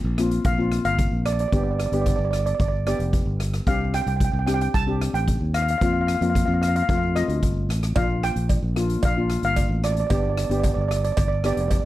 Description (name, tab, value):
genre	calypso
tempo	112 BPM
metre	4/4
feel	straight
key	Bb major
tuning	A4 = 440 Hz
part	steel pan	melody	0.0-11.8 s	D5 to A5	-26 LUFS	right 2 dB	none
part	fingered electric bass	bass	0.0-11.8 s	F1 to F2	-24 LUFS	equal	none
part	steel pan	accompaniment	0.2-11.9 s	A3 to G4	-28 LUFS	left 3 dB	none
part	street-band drum kit	drums	0.2-11.8 s	hi-hat, kick drum, rim click	-26 LUFS	equal	none
part	cowbell	percussion	8.0-11.8 s	none	-32 LUFS	right 7 dB	none
room	little or no reverb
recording	dry, close 1970s-style studio recording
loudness	-20 LUFS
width	side -15 dB against mid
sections	0.0-11.9 A section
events	none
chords	0.0 Bbsus2; 1.5 G; 3.7 Csus2; 5.8 Fsus4; 6.9 F; 8.0 Bb; 10.1 G